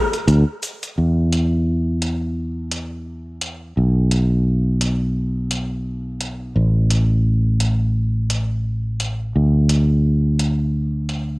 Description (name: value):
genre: sunset chillout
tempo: 86 BPM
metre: 4/4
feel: swing 58% on 16ths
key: B minor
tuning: A4 = 441 Hz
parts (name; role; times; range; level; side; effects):
- electronic hi-hat and shaker; drums; 0.1-11.3 s; none; -25 LUFS; equal; overdrive
- fretless electric bass; bass; 0.3-11.4 s; A1 to E2; -17 LUFS; equal; none
room: little or no reverb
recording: home recording on cassette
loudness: -17 LUFS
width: side -24 dB against mid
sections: 1.0-11.4 A section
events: none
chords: none